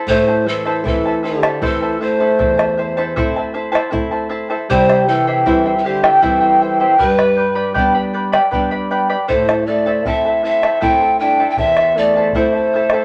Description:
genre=andean folk, Andean ensemble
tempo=78 BPM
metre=3/4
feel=straight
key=A minor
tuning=A4 = 439 Hz
part: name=charango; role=accompaniment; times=0.0-13.0 s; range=E4 to B5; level=-20 LUFS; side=equal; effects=none
part: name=breathy reedy pan flute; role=melody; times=0.1-13.0 s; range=G4 to G5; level=-19 LUFS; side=equal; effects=none
part: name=warm trombone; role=second line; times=0.1-13.0 s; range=D3 to D4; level=-24 LUFS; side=equal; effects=none
part: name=nylon-string guitar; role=accompaniment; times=0.1-13.0 s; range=E2 to E4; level=-26 LUFS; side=equal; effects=none
part: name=bombo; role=percussion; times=0.1-13.0 s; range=none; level=-24 LUFS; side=equal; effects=none
room=wet small room reverb, RT60 0.5 s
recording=none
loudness=-16 LUFS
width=mono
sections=0.1-13.0 A section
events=none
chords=0.1 Am; 4.7 C; 7.0 G; 9.3 Am

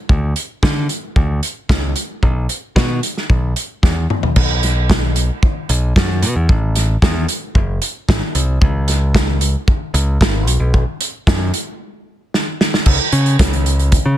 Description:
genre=indie rock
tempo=113 BPM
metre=4/4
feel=straight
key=unclear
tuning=A4 = 437 Hz
part: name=modern bright picked electric bass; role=bass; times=0.1-14.2 s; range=F#1 to D3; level=-16 LUFS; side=equal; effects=none
part: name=loose indie drum kit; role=drums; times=0.1-14.0 s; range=crash cymbal, hi-hat, kick drum, snare drum, toms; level=-16 LUFS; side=equal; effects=soft clipping on snare
room=little or no reverb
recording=dense, heavily limited modern master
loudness=-14 LUFS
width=side -12 dB against mid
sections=0.0-4.4 A section; 4.4-12.9 B section; 12.9-14.2 C section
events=drum fill 3.8-4.4, 12.3-12.9; break 11.8-12.9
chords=none

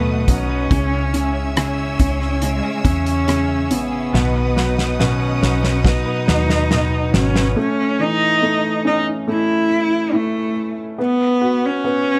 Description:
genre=pop ballad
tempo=70 BPM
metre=4/4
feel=straight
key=unclear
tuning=A4 = 440 Hz
part: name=warm cello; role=melody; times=0.0-12.2 s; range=G#3 to E4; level=-22 LUFS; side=equal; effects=none
part: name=felt-muted upright piano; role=accompaniment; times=0.0-12.2 s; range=B2 to F#4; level=-24 LUFS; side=equal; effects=none
part: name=clear studio string section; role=sustained chords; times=0.0-7.5 s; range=B4 to E6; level=-31 LUFS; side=equal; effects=none
part: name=direct-recorded clean electric guitar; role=arpeggios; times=0.0-7.6 s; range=B2 to B4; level=-31 LUFS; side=equal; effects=spring reverb
part: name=vintage muted fingered electric bass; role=bass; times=0.0-7.5 s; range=G#1 to E2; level=-24 LUFS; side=equal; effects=none
part: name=loose indie drum kit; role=drums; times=0.3-7.6 s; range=hi-hat, kick drum, rim click, snare drum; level=-22 LUFS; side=equal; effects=none
room=small room ambience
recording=none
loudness=-18 LUFS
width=mono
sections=0.0-7.6 A section; 7.6-12.2 B section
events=drum fill 4.1-7.6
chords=0.0 B; 0.7 C#m; 4.1 B; 7.6 A; 11.0 B5

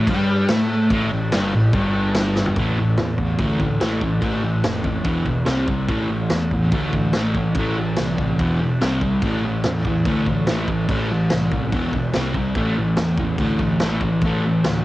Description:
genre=garage rock duo or trio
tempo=144 BPM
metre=4/4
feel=straight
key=A minor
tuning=A4 = 441 Hz
part: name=fuzz guitar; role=riff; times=0.0-14.8 s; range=E2 to C4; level=-20 LUFS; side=equal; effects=distortion, cassette tape
part: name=fuzz picked electric bass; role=bass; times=0.0-14.8 s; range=E1 to A2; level=-24 LUFS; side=equal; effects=overdrive
part: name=vintage drum kit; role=drums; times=0.1-14.7 s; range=crash cymbal, kick drum, snare drum, toms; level=-24 LUFS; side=equal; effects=cassette tape
room=moderate studio reverb, RT60 0.5 s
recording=home recording on cassette, nothing above 10.6 kHz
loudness=-18 LUFS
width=side -16 dB against mid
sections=0.0-2.6 A section; 2.6-14.8 B section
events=drum fill 2.4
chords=0.0 N.C.; 2.6 A5; 5.1 E5; 5.5 C5; 5.9 Am; 8.4 E5; 8.8 C5; 9.2 Am; 11.7 E5; 12.1 C5; 12.6 A5

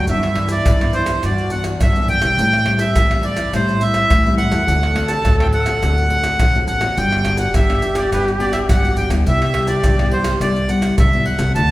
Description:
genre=samba and choro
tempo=105 BPM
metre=4/4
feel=straight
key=unclear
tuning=A4 = 440 Hz
part: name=accordion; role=melody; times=0.0-11.7 s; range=B4 to A5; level=-19 LUFS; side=right 1 dB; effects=none
part: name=breathy trombone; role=second line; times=0.0-11.7 s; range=E4 to A4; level=-25 LUFS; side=equal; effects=none
part: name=nylon-string guitar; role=accompaniment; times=0.0-11.7 s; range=G2 to F#4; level=-23 LUFS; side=left 2 dB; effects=none
part: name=upright bass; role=bass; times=0.0-11.7 s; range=G1 to A2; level=-21 LUFS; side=equal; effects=none
part: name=maracas, surdo, pandeiro and tamborim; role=percussion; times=0.1-11.7 s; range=none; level=-19 LUFS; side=equal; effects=none
room=wet recital hall reverb, RT60 1.6 s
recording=recorded in a church or concert hall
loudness=-14 LUFS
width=side -16 dB against mid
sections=0.0-11.7 A section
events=none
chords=0.1 Em7/G; 2.4 Am7; 4.7 D7; 7.0 Gmaj7; 9.3 Cmaj7

